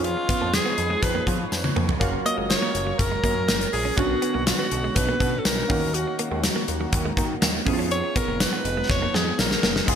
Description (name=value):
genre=1980s-style pop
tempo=122 BPM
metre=4/4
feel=straight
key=unclear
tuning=A4 = 444 Hz
part: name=bright alto saxophone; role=melody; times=0.0-9.9 s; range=E#4 to D#5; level=-26 LUFS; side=equal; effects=digital delay
part: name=glassy digital keys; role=accompaniment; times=0.0-10.0 s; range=G#3 to G#4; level=-31 LUFS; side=right 2 dB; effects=chorus, phaser
part: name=chorused pulse-width pad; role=sustained chords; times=0.0-10.0 s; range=D3 to E#5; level=-33 LUFS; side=equal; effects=none
part: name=direct-recorded clean electric guitar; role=riff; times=0.0-9.7 s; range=F#3 to C#4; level=-32 LUFS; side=right 3 dB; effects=wide subtle chorus
part: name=fat analog bass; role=bass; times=0.0-10.0 s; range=E#1 to E#3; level=-29 LUFS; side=equal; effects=none
part: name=gated 80s drum kit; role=drums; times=0.0-10.0 s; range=crash cymbal, hi-hat, kick drum, snare drum, tambourine, toms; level=-24 LUFS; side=left 1 dB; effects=gated reverb
part: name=tambourine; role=percussion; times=0.5-9.5 s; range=none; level=-40 LUFS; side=left 4 dB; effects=none
room=moderate lush hall reverb, RT60 2.2 s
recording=bright 1980s-style digital production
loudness=-21 LUFS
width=side -8 dB against mid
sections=0.0-9.9 A section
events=alto saxophone solo 0.0-9.9; drum fill 1.5-2.0, 8.9-9.9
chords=0.0 C#7/E#; 2.0 F#maj7; 4.0 Bmadd9; 5.7 D#m7; 7.7 C#7/E#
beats=| 0.04 0.54 1.03 1.52 | 2.01 2.50 3.00 3.49 | 3.98 4.47 4.96 5.46 | 5.95 6.44 6.93 7.42 | 7.91 8.41 8.90 9.39 | 9.88